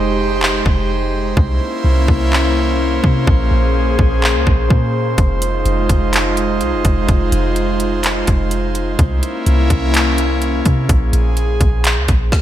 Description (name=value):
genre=hip hop, atmospheric cloud-rap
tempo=126 BPM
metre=4/4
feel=half-time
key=F minor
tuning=A4 = 440 Hz
part: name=airy breathy pad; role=sustained chords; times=0.0-12.3 s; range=Ab3 to C5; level=-18 LUFS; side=equal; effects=chorus, sidechain pumping
part: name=clean 808-style bass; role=bass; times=0.0-12.3 s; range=F1 to C3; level=-17 LUFS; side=equal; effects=none
part: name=trap drum kit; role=drums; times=0.4-12.4 s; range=handclaps, hi-hat, kick drum, snare drum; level=-16 LUFS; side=equal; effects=gated reverb
room=light reverb, digital ambience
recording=bright 1980s-style digital production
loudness=-13 LUFS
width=side -12 dB against mid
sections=0.0-12.4 A section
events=break 0.0-5.2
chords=0.0 Fm7; 1.4 C7b9; 3.3 Bbm9; 5.2 Fm7; 9.0 C7b9; 10.9 Bbm9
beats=0.42 0.89 | 1.37 1.85 2.32 2.80 | 3.27 3.75 4.23 4.70 | 5.18 5.66 6.13 6.61 | 7.08 7.56 8.04 8.51 | 8.99 9.46 9.94 10.42 | 10.89 11.37 11.85 12.32